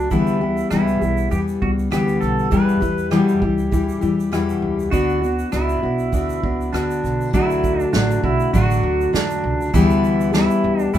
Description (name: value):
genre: acoustic pop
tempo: 100 BPM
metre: 4/4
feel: swing 55% on 16ths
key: D major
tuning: A4 = 442 Hz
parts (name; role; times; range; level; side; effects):
- pedal steel guitar; second line; 0.0-11.0 s; D4 to B4; -24 LUFS; right 3 dB; none
- fingerpicked steel-string acoustic guitar; accompaniment; 0.0-11.0 s; E2 to G4; -19 LUFS; left 2 dB; none
- upright bass; bass; 0.0-11.0 s; A1 to E2; -24 LUFS; right 1 dB; none
- unplugged drum kit; drums; 0.1-11.0 s; kick drum, rim click, shaker, snare drum; -25 LUFS; right 3 dB; none
room: moderate studio reverb, RT60 0.5 s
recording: minimal, uncompressed stereo recording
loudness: -16 LUFS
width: side -11 dB against mid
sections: 0.0-7.3 A section; 7.3-11.0 B section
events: none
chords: 0.1 G6; 2.5 Em; 4.9 Bm; 7.3 D; 9.7 G6/D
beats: | 0.12 0.72 1.32 1.92 | 2.52 3.12 3.73 4.33 | 4.93 5.53 6.13 6.73 | 7.33 7.93 8.54 9.14 | 9.74 10.34 10.94